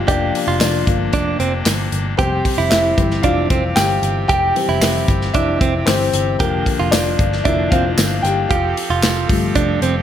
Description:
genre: piano-driven pop.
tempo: 114 BPM.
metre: 4/4.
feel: straight.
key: unclear.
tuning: A4 = 440 Hz.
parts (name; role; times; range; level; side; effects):
dark upright piano; accompaniment; 0.0-10.0 s; C3 to G5; -20 LUFS; left 4 dB; none.
pipe organ, clarinet reed; sustained chords; 0.0-10.0 s; C3 to A4; -27 LUFS; equal; none.
vintage muted picked electric bass; bass; 0.0-10.0 s; F1 to G1; -21 LUFS; equal; none.
direct-recorded clean electric guitar; riff; 0.1-9.9 s; C4 to G4; -21 LUFS; right 6 dB; spring reverb.
modern studio drum kit; drums; 0.1-9.9 s; handclaps, hi-hat, kick drum, snare drum; -20 LUFS; equal; none.
tambourine; percussion; 0.6-9.2 s; none; -28 LUFS; right 12 dB; none.
room: light reverb, small room ambience.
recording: none.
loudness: -14 LUFS.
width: side -10 dB against mid.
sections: 0.0-10.0 A section.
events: upright piano solo 0.0-10.0.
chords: 0.0 Bb/F; 2.2 C/F; 6.4 Bb/F; 8.5 Fadd9.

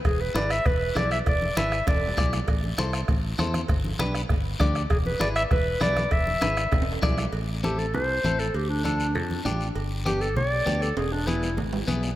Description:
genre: latin, cumbia.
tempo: 198 BPM.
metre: 4/4.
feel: straight.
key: A minor from 7.3 s.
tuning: A4 = 440 Hz.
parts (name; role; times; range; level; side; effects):
bombo; percussion; 0.0-7.3 s; none; -27 LUFS; equal; none.
cowbell and timbales; percussion; 0.0-12.1 s; none; -38 LUFS; right 6 dB; none.
guiro; percussion; 0.0-12.2 s; none; -39 LUFS; left 4 dB; none.
warm clarinet; melody; 0.1-2.3, 4.9-11.6 s; D4 to E5; -27 LUFS; equal; none.
fingered electric bass; bass; 0.1-12.1 s; E1 to F2; -28 LUFS; equal; none.
congas; percussion; 0.1-12.0 s; none; -32 LUFS; equal; none.
clean electric guitar; accompaniment; 0.3-12.1 s; B3 to D5; -32 LUFS; left 2 dB; none.
room: moderate lush hall reverb, RT60 2.7 s.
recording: rough home demo mix.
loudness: -22 LUFS.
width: side -14 dB against mid.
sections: 0.0-7.3 A section; 7.3-12.2 B section.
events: drum fill 1.9-2.5, 6.7-7.3, 11.0-12.2; clarinet solo 7.3-12.2.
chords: 0.0 E7; 2.5 Am; 3.7 G; 4.9 E; 7.3 Am; 8.5 Dm; 9.8 G; 11.0 E.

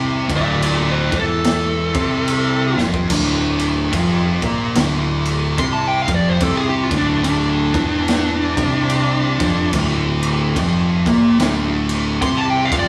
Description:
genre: stoner and doom metal.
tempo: 72 BPM.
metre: 4/4.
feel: swing 60% on 8ths.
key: D minor.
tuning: A4 = 440 Hz.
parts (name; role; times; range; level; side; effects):
thick fuzz guitar; riff; 0.0-12.9 s; D2 to C4; -25 LUFS; equal; distortion.
thick fuzz guitar; riff; 0.0-12.9 s; D2 to C4; -23 LUFS; equal; distortion.
growling picked electric bass; bass; 0.0-12.9 s; D1 to C2; -28 LUFS; equal; overdrive.
raw garage drum kit; drums; 0.3-12.9 s; crash cymbal, kick drum, snare drum; -24 LUFS; equal; none.
fuzz lead guitar; melody; 0.4-12.9 s; D4 to C6; -22 LUFS; equal; distortion.
room: moderate studio reverb, RT60 0.8 s.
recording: band playing live in one room, small room ambience.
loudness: -18 LUFS.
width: mono.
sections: 0.0-12.9 A section.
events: lead electric guitar solo 0.0-12.9; drum fill 2.7-3.1.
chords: 0.0 Dm.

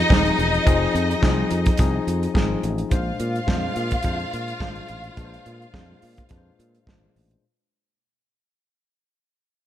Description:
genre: disco.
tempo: 106 BPM.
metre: 4/4.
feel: swing 56% on 16ths.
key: unclear.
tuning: A4 = 440 Hz.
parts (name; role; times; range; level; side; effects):
warm studio violin section; second line; 0.0-7.1 s; Eb4 to F5; -26 LUFS; left 1 dB; none.
tine electric piano; accompaniment; 0.0-7.5 s; Bb2 to C5; -27 LUFS; left 6 dB; none.
fingered electric bass; bass; 0.1-7.3 s; Eb1 to Bb2; -25 LUFS; right 1 dB; none.
warm soul drum kit; drums; 0.1-7.4 s; hi-hat, kick drum, snare drum; -21 LUFS; right 1 dB; gated reverb.
room: light reverb, studio reverb.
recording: none.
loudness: -19 LUFS.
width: side -12 dB against mid.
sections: 0.0-7.4 A section.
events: fade-out 0.0-7.4.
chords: 0.0 Fm7; 2.9 Bb9.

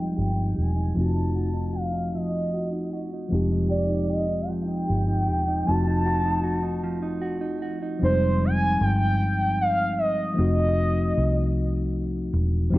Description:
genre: slow six-eight R&B.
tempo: 51 BPM (dotted quarters).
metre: 6/8.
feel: straight.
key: unclear.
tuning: A4 = 439 Hz.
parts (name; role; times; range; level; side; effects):
gliding portamento lead; melody; 0.0-11.9 s; C5 to A5; -27 LUFS; right 1 dB; chorus.
mellow electric guitar; second line; 0.0-8.6 s; F3 to G4; -32 LUFS; right 3 dB; none.
mellow tine electric piano; accompaniment; 0.0-12.8 s; F3 to G4; -27 LUFS; left 2 dB; none.
vintage muted fingered electric bass; bass; 0.0-12.8 s; E1 to C2; -25 LUFS; equal; none.
room: light reverb, digital ambience.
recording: worn, warbling old tape, cassette tape, warbly pitch drift, low-pass filter.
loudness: -22 LUFS.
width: side -18 dB against mid.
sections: 0.0-8.0 A section; 8.0-12.8 B section.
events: filter sweep 0.0-8.0.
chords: 0.0 Fm9; 0.9 F7b9; 3.3 Fm9; 5.7 F7b9; 8.0 Fm9; 10.4 F7b9.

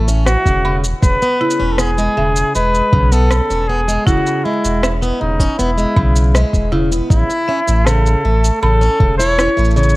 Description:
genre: folktronica.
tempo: 79 BPM.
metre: 4/4.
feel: straight.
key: E major.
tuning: A4 = 444 Hz.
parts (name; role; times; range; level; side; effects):
picked plugged-in swing-style acoustic guitar; arpeggios; 0.0-10.0 s; C#3 to E4; -21 LUFS; equal; none.
warm sub bass; bass; 0.0-10.0 s; E1 to B1; -15 LUFS; equal; none.
electronic shaker and rim click; drums; 0.1-9.9 s; none; -22 LUFS; equal; overdrive, studio reverb.
warm flugelhorn; melody; 0.3-10.0 s; D#4 to C#5; -18 LUFS; equal; tape echo.
electronic kick drum; drums; 0.5-9.2 s; none; -14 LUFS; equal; overdrive, studio reverb.
buzzing marimba with hard mallets; second line; 0.6-9.7 s; E4 to B5; -24 LUFS; right 1 dB; tape echo.
room: light reverb, small room ambience.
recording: dark, warm production, vinyl crackle.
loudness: -12 LUFS.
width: side -19 dB against mid.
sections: 0.0-10.0 A section.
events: none.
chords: 0.0 A; 1.0 E6; 7.1 A.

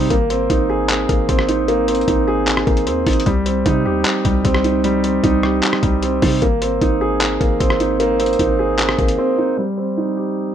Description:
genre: hip hop, trap.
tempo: 152 BPM.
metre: 4/4.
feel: half-time.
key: unclear.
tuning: A4 = 440 Hz.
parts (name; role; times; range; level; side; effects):
dark baby grand piano; accompaniment; 0.0-10.5 s; G3 to Ab4; -16 LUFS; right 1 dB; low-pass filter.
hard-hitting 808-style bass; bass; 0.0-9.2 s; Ab1 to C3; -23 LUFS; left 1 dB; none.
lo-fi sampler-style drum kit; drums; 0.1-9.2 s; handclaps, hi-hat, kick drum, rim click; -20 LUFS; left 1 dB; none.
room: light reverb.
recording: rough home demo mix.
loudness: -15 LUFS.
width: side -9 dB against mid.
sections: 0.0-9.6 A section.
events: drums muted 9.2-9.6.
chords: 0.1 Abadd9; 3.3 Cm; 6.4 Abadd9; 9.6 Cm.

